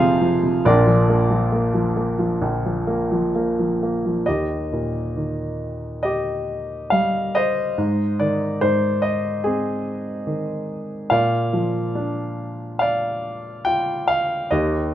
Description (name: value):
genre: classical, lyrical solo piano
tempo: 64-73 BPM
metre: 4/4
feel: rubato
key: Eb major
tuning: A4 = 438 Hz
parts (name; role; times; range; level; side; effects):
- warm grand piano; solo; 0.0-14.9 s; F1 to Ab5; -19 LUFS; equal; none
room: moderate recital hall reverb, RT60 1.4 s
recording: close, detailed microphones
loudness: -19 LUFS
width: side -12 dB against mid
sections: 0.0-4.3 A section; 4.3-14.9 B section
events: none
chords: 0.0 Fm; 0.7 Bb; 4.3 Eb; 7.8 Ab; 11.1 Bb